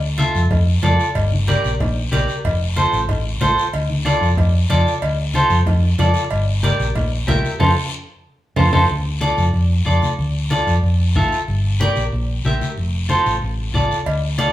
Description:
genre	latin, cumbia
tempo	186 BPM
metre	4/4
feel	straight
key	D minor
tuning	A4 = 438 Hz
part	hollow-body short-scale fingered electric bass	bass	0.0-14.4 s	F1 to F2	-18 LUFS	equal	none
part	clean electric guitar	accompaniment	0.2-14.5 s	F4 to E5	-20 LUFS	equal	none
part	congas	percussion	0.2-14.5 s	none	-23 LUFS	left 1 dB	none
part	cowbell and timbales	percussion	0.2-8.8, 14.1-14.5 s	none	-27 LUFS	right 1 dB	none
part	guiro	percussion	0.2-14.5 s	none	-32 LUFS	left 5 dB	none
room	wet large studio reverb, RT60 0.9 s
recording	band playing live in one room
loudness	-15 LUFS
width	side -14 dB against mid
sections	0.0-8.9 A section; 8.9-14.5 B section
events	band accent 7.6-8.9; drum fill 7.9-8.9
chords	0.0 Dm; 1.2 Gm; 2.4 F; 3.7 Dm; 6.3 Gm; 7.6 F; 8.9 Dm; 11.5 Gm; 12.8 F

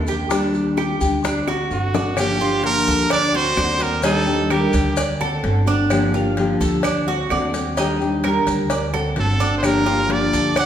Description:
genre	latin, Cuban son and guajira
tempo	129 BPM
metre	4/4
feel	straight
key	G harmonic minor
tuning	A4 = 440 Hz
part	nylon-string guitar	accompaniment	0.0-10.6 s	D3 to G4	-22 LUFS	left 2 dB	none
part	Cuban tres	arpeggios	0.0-10.7 s	D4 to D5	-23 LUFS	right 2 dB	none
part	upright bass	bass	0.0-10.7 s	G1 to Eb2	-24 LUFS	right 1 dB	none
part	maracas	percussion	0.1-10.7 s	none	-35 LUFS	left 3 dB	none
part	bongos and cowbell	percussion	0.3-10.7 s	none	-28 LUFS	left 3 dB	none
part	claves	percussion	0.8-10.7 s	none	-34 LUFS	right 5 dB	none
part	brilliant trumpet	melody	1.7-5.0, 9.2-10.7 s	F#4 to F#5	-21 LUFS	right 2 dB	none
room	wet recital hall reverb, RT60 1.7 s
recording	recorded in a church or concert hall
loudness	-17 LUFS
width	side -9 dB against mid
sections	0.0-2.2 A section; 2.2-10.7 B section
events	drum fill 1.5-2.2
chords	0.3 Ebmaj7; 1.2 D7; 2.2 Gm7; 3.1 D7; 4.0 Ebmaj7; 5.0 D7; 5.9 Gm7; 6.8 D7; 7.8 Ebmaj7; 8.7 D7; 9.6 Gm7

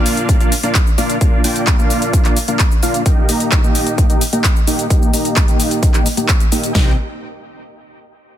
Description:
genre	EDM, festival progressive house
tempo	130 BPM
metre	4/4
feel	straight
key	C minor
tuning	A4 = 435 Hz
part	dense compressed supersaw	riff	0.0-6.9 s	Bb3 to Bb5	-18 LUFS	equal	sidechain pumping, low-pass filter, dub echo
part	big-room dance drum kit	drums	0.1-6.7 s	cabasa, handclaps, hi-hat	-20 LUFS	left 1 dB	none
part	big-room dance drum kit	drums	0.3-6.9 s	kick drum, snare drum	-14 LUFS	equal	none
part	fat analog bass	bass	6.8-7.0 s	C2	-22 LUFS	equal	sidechain pumping
room	little or no reverb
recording	dense, heavily limited modern master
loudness	-12 LUFS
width	side -11 dB against mid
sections	0.0-6.8 A section; 6.8-8.4 B section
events	filter sweep on supersaw synth 0.0-6.8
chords	0.0 Bb; 3.1 Eb; 6.8 Cm

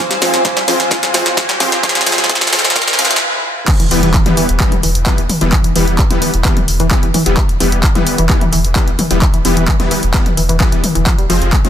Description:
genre	driving peak-time techno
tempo	130 BPM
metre	4/4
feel	straight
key	unclear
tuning	A4 = 440 Hz
part	tight sequenced synth	riff	0.0-11.6 s	E3 to Ab3	-21 LUFS	equal	chorus, tube saturation, sidechain pumping, digital delay
part	overtone-sweeping drone	drone	0.0-3.2 s	E3	-32 LUFS	right 1 dB	none
part	riser, swell and impact	sound effects	0.0-5.5 s	none	-22 LUFS	equal	none
part	granular cloud pad	texture	0.0-3.2 s	C5 to Ab5	-21 LUFS	right 1 dB	built-in reverb, sidechain pumping
part	punchy analog drum machine	drums	0.1-11.7 s	crash cymbal, handclaps, hi-hat, snare drum, toms	-16 LUFS	equal	high-pass filter on hats, high-pass filter on toms, high-pass filter on snare, high-pass filter on cymbals
part	rave stab	stabs	0.2-11.7 s	E3 to C4	-18 LUFS	left 2 dB	chorus, built-in reverb, sidechain pumping, ping-pong delay
part	electronic kick drum	drums	0.4-11.6 s	none	-14 LUFS	equal	none
part	warm sub bass	bass	3.9-11.7 s	E1 to F1	-17 LUFS	equal	tube saturation, sidechain pumping, low-pass filter
room	light reverb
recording	dense, heavily limited modern master, high-pass filter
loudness	-11 LUFS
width	side -10 dB against mid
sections	0.0-3.7 A section; 3.7-11.7 B section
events	build-up 0.0-3.7; drum fill 0.0-3.2; riser 0.0-3.2; filter sweep on synth arpeggio sound 0.0-3.7; swell 2.8-3.7; stop 3.2-3.7; drop 3.7-11.7; impact 3.7-5.5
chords	0.0 Fm; 3.7 Em; 11.1 Fm

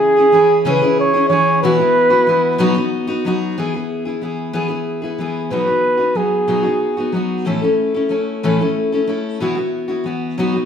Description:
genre	folk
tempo	62 BPM (dotted quarters)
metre	6/8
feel	straight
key	E major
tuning	A4 = 440 Hz
part	mellow flugelhorn	melody	0.0-7.1 s	G#4 to C#5	-14 LUFS	right 1 dB	none
part	picked steel-string acoustic guitar	accompaniment	0.0-10.7 s	A2 to A4	-18 LUFS	left 2 dB	none
room	wet large studio reverb, RT60 0.9 s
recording	band playing live in one room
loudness	-14 LUFS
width	side -8 dB against mid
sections	0.0-3.6 A section; 3.6-10.7 B section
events	none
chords	0.0 C#m; 1.6 Bsus4; 2.6 B; 3.6 E; 5.5 B; 7.5 A; 9.4 Bsus4

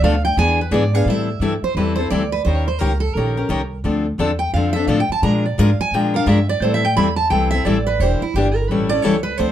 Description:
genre	acoustic string swing (jazz manouche)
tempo	173 BPM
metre	4/4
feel	swing 61% on 8ths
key	A minor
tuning	A4 = 440 Hz
part	picked steel-string acoustic guitar	second line	0.0-9.5 s	E4 to B5	-21 LUFS	right 4 dB	none
part	picked steel-string acoustic guitar	accompaniment	0.0-9.5 s	B2 to A#4	-20 LUFS	left 3 dB	none
part	upright bass	bass	0.0-9.5 s	E1 to Bb2	-20 LUFS	equal	none
room	moderate club reverb, RT60 0.5 s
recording	dark, warm production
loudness	-16 LUFS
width	side -11 dB against mid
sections	0.0-1.1 A section; 1.1-9.5 A section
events	steel-string acoustic guitar solo 0.0-9.5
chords	0.4 E7; 1.1 Am7; 2.5 D#6; 3.8 Dm7; 5.2 Bb6; 6.6 Am7; 8.0 Em7b5; 8.7 A7

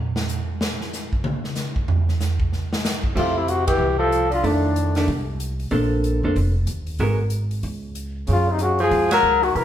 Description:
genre	jazz, small-group swing and bop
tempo	188 BPM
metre	4/4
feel	swing 62% on 8ths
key	unclear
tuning	A4 = 439 Hz
part	swinging big-band drum kit	drums	0.2-9.6 s	crash cymbal, hi-hat, kick drum, ride cymbal, snare drum, toms	-25 LUFS	right 1 dB	none
part	breathy trumpet	melody	3.2-5.1, 8.3-9.6 s	D4 to Bb4	-20 LUFS	left 4 dB	none
part	warm tenor saxophone	second line	3.2-5.1, 8.3-9.6 s	A2 to Gb3	-24 LUFS	right 3 dB	none
part	vintage hollow-body jazz guitar	accompaniment	3.2-7.2 s	Eb3 to C5	-24 LUFS	right 1 dB	none
part	upright bass	bass	3.2-9.6 s	F1 to Gb2	-23 LUFS	equal	none
room	wet large studio reverb, RT60 1.2 s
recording	band playing live in one room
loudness	-19 LUFS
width	side -10 dB against mid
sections	0.0-3.2 A section; 3.2-9.6 B section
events	drum solo 0.0-3.2; band accent 3.6, 9.1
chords	0.0 N.C.; 3.2 Fmaj9; 4.4 F6; 5.7 Bbmaj9; 7.0 Abm9; 7.6 N.C.; 8.3 Gbmaj9

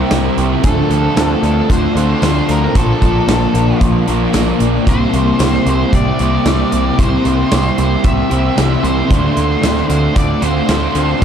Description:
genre	rock, shoegaze and dream pop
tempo	113 BPM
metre	4/4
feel	straight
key	unclear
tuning	A4 = 440 Hz
part	granular cloud pad	sustained chords	0.0-11.2 s	Bb3 to D6	-25 LUFS	equal	none
part	electric guitar through a small old amp	arpeggios	0.0-11.2 s	E3 to G4	-23 LUFS	right 2 dB	lush chorus, analog delay
part	overdriven electric guitar	riff	0.0-11.2 s	Bb2 to Bb4	-20 LUFS	right 10 dB	reverse reverb
part	overdriven semi-hollow guitar	riff	0.0-11.2 s	Bb2 to D4	-21 LUFS	equal	spring reverb
part	thick fuzz guitar	riff	0.0-11.2 s	Bb2 to D4	-20 LUFS	left 8 dB	distortion, wide subtle chorus
part	growling picked electric bass	bass	0.0-11.2 s	Bb1 to D2	-18 LUFS	equal	overdrive
part	big rock drum kit	drums	0.1-11.2 s	hi-hat, kick drum, snare drum	-17 LUFS	equal	none
part	tambourine	percussion	0.1-10.8 s	none	-34 LUFS	left 12 dB	none
part	octave-fuzz lead guitar	melody	0.6-11.2 s	A4 to E5	-22 LUFS	left 1 dB	distortion, analog delay
room	light reverb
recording	dark, warm production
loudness	-11 LUFS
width	side -8 dB against mid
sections	0.0-11.2 A section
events	none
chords	0.0 C7; 0.6 Dm7; 2.8 Bbmaj7; 4.9 C7; 9.1 Dm7

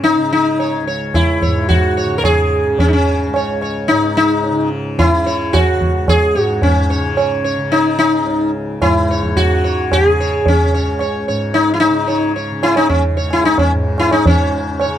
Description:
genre	indian classical, Hindustani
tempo	110 BPM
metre	7/4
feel	straight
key	C# raga kafi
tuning	A4 = 440 Hz
part	sitar	melody	0.0-15.0 s	C#4 to C#5	-15 LUFS	left 1 dB	none
part	tanpura	drone	0.0-15.0 s	C#2 to C#3	-23 LUFS	equal	none
part	tabla	percussion	0.0-15.0 s	none	-17 LUFS	right 1 dB	none
room	little or no reverb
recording	dry, close 1970s-style studio recording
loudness	-13 LUFS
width	side -11 dB against mid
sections	0.0-14.3 A section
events	none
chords	none

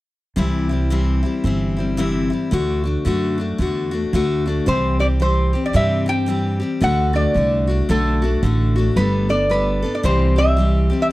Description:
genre	honky-tonk and classic country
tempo	112 BPM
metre	4/4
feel	swing 61% on 8ths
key	C major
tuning	A4 = 440 Hz
part	picked steel-string acoustic guitar	accompaniment	0.4-11.1 s	C3 to A4	-20 LUFS	left 2 dB	none
part	upright bass	bass	0.4-10.9 s	G1 to G2	-20 LUFS	right 1 dB	none
part	lap resonator guitar	melody	4.7-11.1 s	A4 to G5	-21 LUFS	right 1 dB	none
room	studio reverb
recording	dry, close 1970s-style studio recording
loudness	-16 LUFS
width	side -17 dB against mid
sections	0.4-4.7 A section; 4.7-11.1 B section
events	none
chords	0.4 C; 2.5 D; 4.7 C; 6.8 D; 9.0 Gadd9; 10.0 C

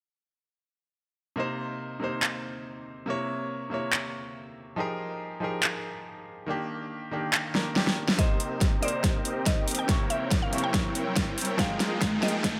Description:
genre	future bass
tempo	141 BPM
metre	4/4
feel	half-time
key	C minor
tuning	A4 = 440 Hz
part	bright grand piano	accompaniment	1.4-12.6 s	C3 to Db6	-35 LUFS	equal	sidechain pumping, dub echo
part	dubstep drum kit	drums	2.2-12.5 s	finger snaps, handclaps, hi-hat, snare drum	-30 LUFS	equal	none
part	mallet-like synth pluck	melody	8.2-12.4 s	D5 to G5	-37 LUFS	equal	chorus, sidechain pumping, dub echo
part	airy breathy pad	sustained chords	8.2-12.6 s	Ab3 to Db6	-44 LUFS	equal	none
part	supersaw chords	riff	8.2-12.6 s	Bb3 to G5	-36 LUFS	equal	sidechain pumping, low-pass filter
part	electronic kick drum	drums	8.2-12.5 s	none	-30 LUFS	equal	none
part	riser	sound effects	10.1-12.6 s	none	-37 LUFS	equal	none
room	moderate lush hall reverb, RT60 1.7 s, digital ambience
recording	high-pass filter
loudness	-28 LUFS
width	mono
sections	1.4-8.2 A section; 8.2-12.6 B section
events	drum fill 7.5-8.2, 8.2-12.6; build-up 8.2-12.6; filter sweep on supersaw synth 8.2-12.6; filter sweep 8.2-12.6; riser 10.1-12.6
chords	1.4 Cm7; 3.1 C7b9; 4.8 Fm11; 6.5 Ebmaj7; 8.2 Cm7; 9.9 C7b9; 11.6 Fm11

